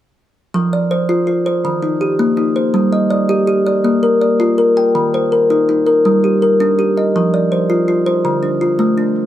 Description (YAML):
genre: southern african traditional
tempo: 109 BPM (dotted quarters)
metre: 12/8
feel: straight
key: unclear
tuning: A4 = 439 Hz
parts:
  - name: kalimba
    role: solo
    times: 0.5-9.3 s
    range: D3 to G5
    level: -12 LUFS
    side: equal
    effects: tape echo
room: wet small room reverb, RT60 0.5 s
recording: heard from further back in the room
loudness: -12 LUFS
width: side -12 dB against mid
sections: 0.5-9.3 A section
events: none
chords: 0.5 F5; 1.6 Eb; 2.7 G5; 3.8 Bb; 4.9 Eb; 6.0 Gm; 7.1 F5; 8.2 Dm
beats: | 0.55 1.09 1.64 2.19 | 2.74 3.29 3.84 4.39 | 4.94 5.49 6.04 6.59 | 7.14 7.70 8.25 8.80